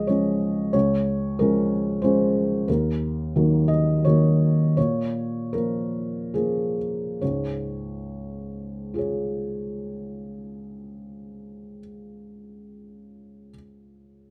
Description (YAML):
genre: neoclassical minimalist piano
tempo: 66-95 BPM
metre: 3/4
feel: rubato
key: Db major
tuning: A4 = 440 Hz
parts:
  - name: felt-muted upright piano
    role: solo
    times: 0.0-14.3 s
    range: Db2 to Eb5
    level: -25 LUFS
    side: equal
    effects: none
room: light reverb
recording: none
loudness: -23 LUFS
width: mono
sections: 0.0-7.2 A section; 7.2-12.3 B section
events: slowing down 1.7-7.2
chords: 0.0 Db; 2.7 Ebm; 4.8 Bbm; 7.2 Db